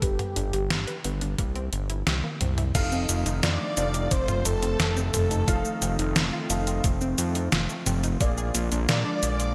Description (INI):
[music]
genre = synthwave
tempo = 88 BPM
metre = 4/4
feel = straight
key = unclear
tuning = A4 = 440 Hz
[part]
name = unison lead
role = melody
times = 0.0-9.5 s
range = G4 to D5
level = -34 LUFS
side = equal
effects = delay
[part]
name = analog pluck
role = arpeggios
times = 0.0-9.5 s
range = A3 to B4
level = -38 LUFS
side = equal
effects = chorus, phaser, delay
[part]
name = fat analog bass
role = bass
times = 0.0-9.5 s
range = F1 to Bb2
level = -30 LUFS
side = equal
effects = sidechain pumping
[part]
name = detuned 8-bit digital drum machine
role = drums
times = 0.0-9.5 s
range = crash cymbal, hi-hat, shaker, snare drum, toms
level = -30 LUFS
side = equal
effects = gated reverb
[part]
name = electronic kick drum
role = drums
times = 0.0-8.3 s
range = none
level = -29 LUFS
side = equal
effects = none
[part]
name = warm analog pad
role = sustained chords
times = 3.2-9.5 s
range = D3 to F4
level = -37 LUFS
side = equal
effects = chorus, sidechain pumping
[part]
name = dark grand piano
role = stabs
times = 2.7-9.5 s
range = Bb3 to F5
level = -36 LUFS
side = equal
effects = ensemble chorus, delay
[part]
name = string machine, violins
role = second line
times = 3.4-9.5 s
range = A4 to D5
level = -40 LUFS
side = equal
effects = ensemble chorus
[sound]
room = moderate lush hall reverb, RT60 2.7 s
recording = bright 1980s-style digital production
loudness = -26 LUFS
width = mono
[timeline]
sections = 0.0-2.8 A section; 2.8-9.5 B section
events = filter sweep on synth arpeggio sound 0.0-2.8; drum fill 2.1-2.8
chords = 0.0 G; 1.4 C7; 2.8 F7; 8.2 Bb7